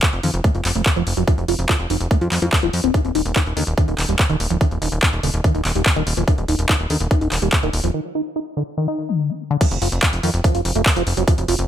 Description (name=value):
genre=psychedelic trance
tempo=144 BPM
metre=4/4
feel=straight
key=unclear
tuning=A4 = 440 Hz
part: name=liquid acid bass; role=riff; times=0.0-11.5 s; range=D3 to F4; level=-23 LUFS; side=moving between left 6 dB and right 7 dB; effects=phaser, auto-pan, sidechain pumping, tape echo
part: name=electronic kick drum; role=drums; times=0.0-11.4 s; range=none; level=-17 LUFS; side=equal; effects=small room ambience
part: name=techno drum kit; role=drums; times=0.0-11.7 s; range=crash cymbal, handclaps, hi-hat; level=-22 LUFS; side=equal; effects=overdrive, small room ambience
part: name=plucky analog bass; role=bass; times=0.1-11.7 s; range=Eb1 to F2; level=-21 LUFS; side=equal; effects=none
room=little or no reverb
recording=none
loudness=-17 LUFS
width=side -10 dB against mid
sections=0.0-9.6 A section; 9.6-11.7 B section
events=filter sweep on acid bass 0.0-9.6; break 7.9-9.6; drop 9.6-11.7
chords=0.0 F5; 2.9 N.C.; 9.6 F5